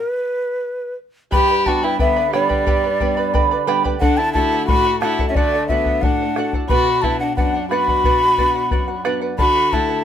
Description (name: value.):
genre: andean folk, Andean ensemble.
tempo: 89 BPM.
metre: 2/4.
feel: straight.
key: unclear.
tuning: A4 = 440 Hz.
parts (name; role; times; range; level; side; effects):
breathy hollow large quena; melody; 0.0-10.0 s; B4 to B5; -19 LUFS; equal; none.
warm violin; second line; 1.3-10.0 s; G3 to G4; -23 LUFS; left 2 dB; none.
charango; accompaniment; 1.3-10.0 s; G4 to B5; -23 LUFS; right 7 dB; none.
nylon-string guitar; accompaniment; 1.3-10.0 s; F#2 to F#4; -25 LUFS; left 5 dB; none.
bombo; percussion; 1.3-9.9 s; none; -22 LUFS; left 1 dB; none.
room: light reverb.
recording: minimal, uncompressed stereo recording.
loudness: -15 LUFS.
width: side -9 dB against mid.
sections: 0.0-1.3 A section; 1.3-10.0 B section.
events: stop 0.0-1.3.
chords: 0.0 N.C.; 1.3 G; 4.0 D; 6.7 Bm; 9.4 D.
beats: 0.65 | 1.32 2.00 | 2.67 3.34 | 4.02 4.69 | 5.36 6.04 | 6.71 7.38 | 8.05 8.72 | 9.40.